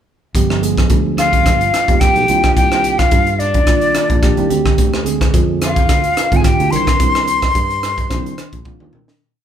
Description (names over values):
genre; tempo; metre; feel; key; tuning
electric jazz fusion; 108 BPM; 4/4; swing 54% on 16ths; C minor; A4 = 440 Hz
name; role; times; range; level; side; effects
sustaining fretless electric bass; bass; 0.3-9.1 s; F1 to G2; -21 LUFS; equal; none
crisp fusion drum kit; drums; 0.3-9.2 s; hi-hat, kick drum, rim click, snare drum, toms; -16 LUFS; equal; none
mellow reed electric piano; accompaniment; 0.4-9.2 s; D3 to C5; -19 LUFS; right 4 dB; none
bright silver concert flute; melody; 1.2-8.7 s; D5 to C6; -16 LUFS; left 1 dB; none
crunchy overdriven guitar; second line; 1.2-8.7 s; D4 to C5; -24 LUFS; left 1 dB; none
room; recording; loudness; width
light reverb; band playing live in one room; -12 LUFS; side -9 dB against mid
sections
0.3-9.2 A section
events
fade-out 7.0-9.2; drum fill 8.7-9.2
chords
0.3 G7b9; 2.3 Cm11; 4.5 Fm69; 6.7 Cm9